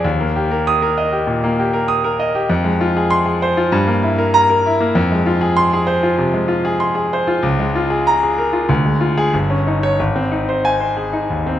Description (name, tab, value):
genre	classical, virtuoso piano study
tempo	97 BPM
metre	4/4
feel	rubato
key	unclear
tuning	A4 = 439 Hz
part	clear concert grand piano	solo	0.0-11.6 s	G1 to Eb6	-14 LUFS	equal	none
room	wet recital hall reverb, RT60 1.4 s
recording	none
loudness	-14 LUFS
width	side -11 dB against mid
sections	0.0-11.6 A section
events	none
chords	0.0 Eb; 2.5 Fm; 3.7 Edim/G; 5.0 Fm; 7.4 Bbm7/Db; 8.7 Ddim; 9.3 Eb7/G; 10.0 Ab